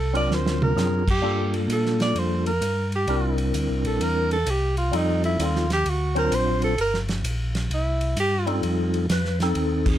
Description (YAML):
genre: soul jazz organ trio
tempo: 130 BPM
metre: 4/4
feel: swing 66% on 8ths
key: F mixolydian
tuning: A4 = 440 Hz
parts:
  - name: breathy tenor saxophone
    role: melody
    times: 0.0-8.5 s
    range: Eb4 to D5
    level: -25 LUFS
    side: right 2 dB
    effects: none
  - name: mellow tonewheel organ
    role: bass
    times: 0.0-10.0 s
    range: G1 to Bb2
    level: -25 LUFS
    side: equal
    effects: chorus vibrato, slow rotary speaker
  - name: percussive tonewheel organ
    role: melody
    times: 0.1-10.0 s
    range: Gb3 to C5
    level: -25 LUFS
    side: left 2 dB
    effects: fast rotary speaker
  - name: warm soul drum kit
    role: drums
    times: 0.2-9.9 s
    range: crash cymbal, hi-hat, kick drum, ride cymbal, snare drum, toms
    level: -30 LUFS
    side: right 1 dB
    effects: none
room: little or no reverb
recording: close, detailed microphones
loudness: -21 LUFS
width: side -12 dB against mid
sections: 0.0-8.6 A section; 8.6-10.0 B section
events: tenor saxophone solo 0.0-8.6; drum fill 0.3-0.8; band accent 9.8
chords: 0.3 D7alt; 1.2 Gm7; 3.1 C9; 4.9 F9; 5.9 D7alt; 6.8 Gm; 7.7 C; 8.6 F9